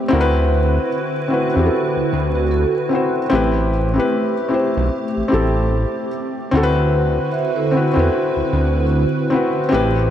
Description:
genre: hip hop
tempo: 75 BPM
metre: 4/4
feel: swing 60% on 16ths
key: unclear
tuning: A4 = 441 Hz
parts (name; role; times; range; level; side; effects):
- felt-muted upright piano; accompaniment; 0.0-10.1 s; C4 to C5; -19 LUFS; left 2 dB; cassette tape
- hollow soft pad; sustained chords; 0.0-10.1 s; D3 to B4; -23 LUFS; right 2 dB; ensemble chorus
- fat analog bass; bass; 0.1-10.1 s; A1 to E2; -18 LUFS; equal; none
- vibraphone with soft mallets; second line; 2.4-9.5 s; C4 to E5; -24 LUFS; right 3 dB; ping-pong delay
room: moderate plate reverb, RT60 3.5 s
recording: dreamy mix soaked in reverb, vinyl crackle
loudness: -16 LUFS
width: side -10 dB against mid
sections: 0.0-10.1 A section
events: none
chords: 0.1 D13; 3.3 Am9; 6.5 D13

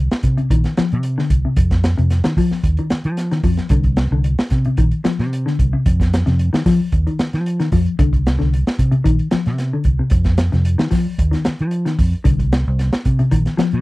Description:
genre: afrobeat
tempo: 112 BPM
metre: 4/4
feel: straight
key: C minor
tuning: A4 = 440 Hz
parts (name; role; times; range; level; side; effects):
- mellow electric guitar; arpeggios; 0.0-13.8 s; C3 to F3; -19 LUFS; left 3 dB; lush chorus
- fingered electric bass; bass; 0.0-13.8 s; Bb1 to F3; -17 LUFS; equal; none
- crunchy breakbeat drum kit; drums; 0.1-13.8 s; hi-hat, kick drum, snare drum; -19 LUFS; equal; none
room: little or no reverb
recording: dry, close 1970s-style studio recording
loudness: -15 LUFS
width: side -20 dB against mid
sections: 0.0-13.8 A section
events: none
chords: 0.0 Cmadd9; 1.6 F5; 3.7 Csus2; 5.9 F5; 8.0 Csus2; 10.1 F5; 12.3 Cmadd9

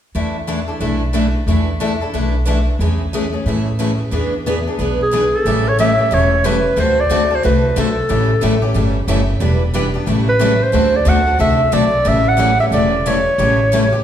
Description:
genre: acoustic string swing (jazz manouche)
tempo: 182 BPM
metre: 4/4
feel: swing 61% on 8ths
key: A mixolydian from 5.5 s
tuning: A4 = 440 Hz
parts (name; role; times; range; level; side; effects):
- picked old ladder-braced acoustic guitar; accompaniment; 0.1-14.0 s; C#3 to A4; -20 LUFS; left 4 dB; none
- picked steel-string acoustic guitar; accompaniment; 0.1-13.8 s; D3 to B4; -23 LUFS; right 4 dB; none
- upright bass; bass; 0.1-13.9 s; E1 to A2; -18 LUFS; equal; none
- warm clarinet; melody; 5.0-14.0 s; G#4 to F#5; -15 LUFS; equal; none
room: wet recital hall reverb, RT60 1.6 s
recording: recorded in a church or concert hall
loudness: -13 LUFS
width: side -10 dB against mid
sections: 0.1-5.5 A section; 5.5-14.0 B section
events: none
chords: 0.1 E7sus4; 2.8 Amaj7/E; 4.1 E7; 5.5 A7; 6.8 D7; 8.1 A7; 9.4 Em7; 10.1 A7; 10.7 D7; 12.1 A7

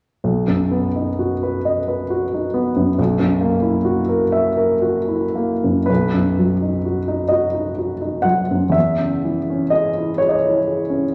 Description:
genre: classical, romantic nocturne for solo piano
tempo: 35-47 BPM (dotted quarters)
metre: 6/8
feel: rubato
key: B major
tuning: A4 = 439 Hz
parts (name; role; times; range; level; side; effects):
- warm grand piano; solo; 0.2-11.1 s; B1 to F#5; -19 LUFS; equal; none
room: wet recital hall reverb, RT60 1.7 s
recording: none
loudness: -19 LUFS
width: mono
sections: 0.2-5.9 A section; 5.9-11.1 B section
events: none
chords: 0.2 B; 3.0 F#7/B; 5.9 B; 8.7 C#m/E

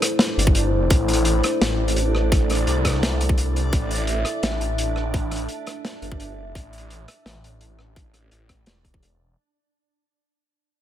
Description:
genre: half-time drum and bass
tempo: 170 BPM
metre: 4/4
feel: half-time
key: A minor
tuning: A4 = 440 Hz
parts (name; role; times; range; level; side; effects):
- dark analog pad; sustained chords; 0.0-9.4 s; A3 to E5; -26 LUFS; left 1 dB; lush chorus, sidechain pumping
- crunchy breakbeat drum kit; drums; 0.0-9.1 s; hi-hat, rim click, snare drum; -24 LUFS; equal; none
- backwards swelling texture; texture; 0.0-9.4 s; D4; -33 LUFS; right 3 dB; built-in reverb
- phased detuned saw bass; bass; 0.4-9.4 s; E1 to C2; -23 LUFS; equal; phaser
- electronic kick drum; drums; 0.5-9.0 s; none; -20 LUFS; equal; none
room: light reverb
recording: none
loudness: -19 LUFS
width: side -11 dB against mid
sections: 0.0-9.4 A section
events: fade-out 0.0-9.4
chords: 0.0 Am

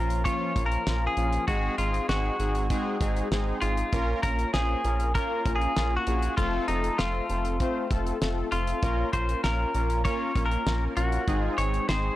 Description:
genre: synth-pop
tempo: 98 BPM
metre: 4/4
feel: straight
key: Bb minor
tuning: A4 = 437 Hz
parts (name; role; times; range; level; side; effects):
- semi-hollow electric guitar; melody; 0.0-12.2 s; Eb4 to Db5; -30 LUFS; left 1 dB; none
- analog synth brass; accompaniment; 0.0-12.2 s; F3 to C5; -31 LUFS; left 1 dB; chorus
- rubbery square bass; bass; 0.0-12.1 s; F1 to Bb1; -28 LUFS; equal; none
- damped 70s drum kit; drums; 0.1-12.0 s; hi-hat, kick drum, snare drum; -31 LUFS; equal; none
room: small room ambience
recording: dry, gritty hardware recording, transformer saturation, cassette tape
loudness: -24 LUFS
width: side -15 dB against mid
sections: 0.0-12.2 A section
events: none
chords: 0.0 Bbm; 1.5 Ab7; 3.9 Bbm; 6.4 F; 8.8 Bbm; 11.3 Ab

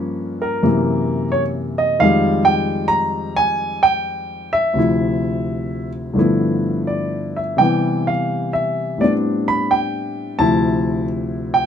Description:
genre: solo jazz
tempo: 86 BPM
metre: 4/4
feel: swing 68% on 8ths, rubato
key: unclear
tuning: A4 = 440 Hz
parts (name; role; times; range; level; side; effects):
- warm grand piano; solo; 0.0-11.7 s; D2 to B5; -16 LUFS; equal; none
room: light reverb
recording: none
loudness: -16 LUFS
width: side -8 dB against mid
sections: 0.0-11.7 A section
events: none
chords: 0.0 Gm7b5; 0.6 F#7#11; 2.0 Fm9; 4.8 Dm9; 6.2 G13; 7.6 Cmaj7; 9.0 Am11; 10.4 Dm9

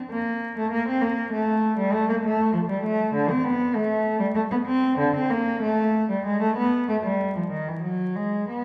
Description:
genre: classical, baroque-style suite movement for unaccompanied cello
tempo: 98 BPM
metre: 3/4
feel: rubato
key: unclear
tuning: A4 = 438 Hz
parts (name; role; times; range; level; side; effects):
- warm cello; solo; 0.1-8.6 s; D3 to C4; -24 LUFS; equal; none
room: wet recital hall reverb, RT60 1.6 s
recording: heard from further back in the room, vinyl crackle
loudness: -24 LUFS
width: mono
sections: 0.0-8.6 A section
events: none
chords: none

